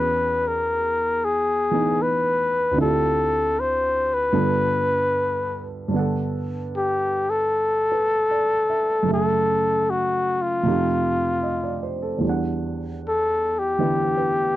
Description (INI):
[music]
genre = jazz ballad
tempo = 76 BPM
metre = 4/4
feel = swing 66% on 8ths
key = G major from 5.9 s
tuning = A4 = 437 Hz
[part]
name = breathy trumpet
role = melody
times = 0.0-14.6 s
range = F4 to C5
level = -20 LUFS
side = left 2 dB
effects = none
[part]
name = warm baby grand piano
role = accompaniment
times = 0.0-14.6 s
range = D2 to F#5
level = -25 LUFS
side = right 2 dB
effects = none
[sound]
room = light reverb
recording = dry, close 1970s-style studio recording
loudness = -20 LUFS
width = side -14 dB against mid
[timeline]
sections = 0.0-5.9 A section; 5.9-14.6 B section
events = none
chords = 0.0 E6; 2.8 Dm11; 4.3 G9; 5.9 Gmaj9; 9.1 F#m7; 10.6 F9; 12.2 Em9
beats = 0.43 1.21 1.98 | 2.76 3.55 4.33 5.12 | 5.92 6.71 7.50 8.29 | 9.08 9.86 10.65 11.43 | 12.22 13.01 13.79